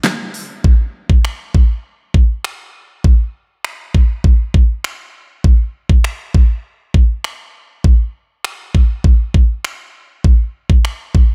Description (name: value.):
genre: pop.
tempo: 100 BPM.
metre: 4/4.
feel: straight.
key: none.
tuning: none.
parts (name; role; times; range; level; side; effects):
pop drum kit; drums; 0.0-11.3 s; finger snaps, handclaps, hi-hat, kick drum, snare drum; -13 LUFS; equal; none.
room: little or no reverb.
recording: none.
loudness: -15 LUFS.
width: mono.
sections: 0.6-11.3 A section.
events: none.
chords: none.